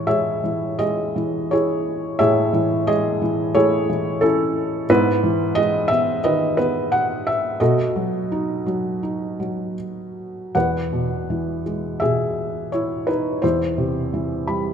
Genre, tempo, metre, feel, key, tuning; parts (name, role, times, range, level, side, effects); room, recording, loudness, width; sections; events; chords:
classical, lyrical solo piano; 76-91 BPM; 4/4; rubato; E major; A4 = 441 Hz
felt-muted upright piano; solo; 0.0-14.7 s; E2 to B5; -19 LUFS; equal
moderate concert hall reverb, RT60 2.3 s; minimal, uncompressed stereo recording; -19 LUFS; side -7 dB against mid
0.0-10.5 A section; 10.5-14.7 B section
felt piano fill 14.1-14.7
0.0 Amaj7; 4.9 Emaj7/G#; 7.6 B7; 10.5 Eadd9; 13.4 C/E